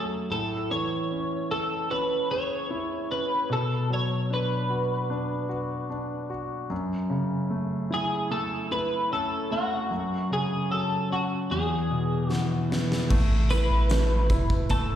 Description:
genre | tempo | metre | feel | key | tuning
pop ballad | 75 BPM | 4/4 | straight | A major | A4 = 440 Hz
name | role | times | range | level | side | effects
twelve-string electric guitar | melody | 0.0-15.0 s | F#4 to C#5 | -28 LUFS | equal | analog chorus, slapback echo, tape echo
clear concert grand piano | accompaniment | 0.0-15.0 s | E2 to A4 | -28 LUFS | equal | slapback echo
huge arena drum kit | drums | 12.3-14.9 s | crash cymbal, hi-hat, kick drum, snare drum | -27 LUFS | equal | none
warm sub bass | bass | 13.1-15.0 s | E1 to A1 | -24 LUFS | equal | none
room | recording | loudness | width
light reverb | live gig heard through the venue's PA, recital hall reverb | -24 LUFS | side -10 dB against mid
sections
0.0-13.1 A section; 13.1-15.0 B section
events
drum fill 12.3-13.1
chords
0.3 Amaj7; 3.5 Bm; 6.7 F#m7; 9.9 F#madd9; 11.5 E; 13.1 A5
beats
| 0.31 1.11 1.91 2.71 | 3.51 4.31 5.11 5.91 | 6.71 7.51 8.31 9.11 | 9.91 10.71 11.51 12.31 | 13.11 13.91 14.71

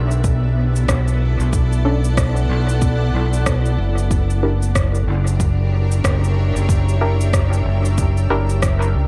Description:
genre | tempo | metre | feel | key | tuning
ambient dub | 93 BPM | 4/4 | swing 60% on 16ths | B minor | A4 = 441 Hz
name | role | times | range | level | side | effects
granular cloud pad | sustained chords | 0.0-9.1 s | B3 to F#5 | -28 LUFS | equal | built-in reverb
overdriven fingered electric bass | bass | 0.0-9.1 s | F#1 to C#2 | -19 LUFS | equal | none
electronic cabasa and rim click | drums | 0.1-8.9 s | none | -29 LUFS | equal | overdrive, dub echo
electronic kick drum | drums | 0.2-8.8 s | none | -23 LUFS | equal | overdrive
filtered dub chord stab | stabs | 1.9-8.5 s | C#4 to A#4 | -27 LUFS | equal | chorus, dub echo
room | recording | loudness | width
digital ambience | dark, warm production | -18 LUFS | mono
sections
0.0-9.1 A section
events
none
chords
0.0 Bm7; 4.1 F#7b9b13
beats
0.24 0.88 | 1.53 2.17 2.82 3.46 | 4.11 4.75 5.40 6.04 | 6.69 7.33 7.98 8.62

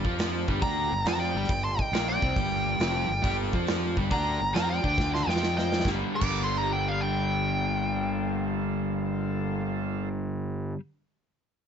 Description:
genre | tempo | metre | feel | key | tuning
blues rock power trio and southern rock | 138 BPM | 4/4 | swing 68% on 8ths | G minor | A4 = 440 Hz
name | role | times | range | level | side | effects
overdriven tonewheel organ | sustained chords | 0.0-10.1 s | G3 to A4 | -41 LUFS | right 3 dB | slow rotary speaker
overdriven electric guitar | riff | 0.0-10.8 s | F2 to F4 | -30 LUFS | left 1 dB | none
fuzz fingered electric bass | bass | 0.0-10.7 s | F1 to F2 | -32 LUFS | equal | overdrive
big rock drum kit | drums | 0.0-6.3 s | crash cymbal, hi-hat, kick drum, snare drum | -31 LUFS | equal | none
bluesy overdriven lead guitar | melody | 0.6-10.1 s | F5 to D6 | -29 LUFS | equal | wah, distortion
lightly driven lead guitar | second line | 0.6-10.1 s | D4 to A5 | -40 LUFS | right 2 dB | none
room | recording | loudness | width
small room ambience | nothing above 7.7 kHz | -25 LUFS | side -8 dB against mid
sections
0.0-5.9 A section; 5.9-9.3 B section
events
drum fill 5.0-5.9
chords
0.0 Gm; 5.9 Gm9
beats
0.18 | 0.62 1.06 1.49 1.93 | 2.37 2.80 3.24 3.67 | 4.11 4.55 4.98 5.42 | 5.85 6.29 6.72 7.16 | 7.60 8.03 8.47 8.90

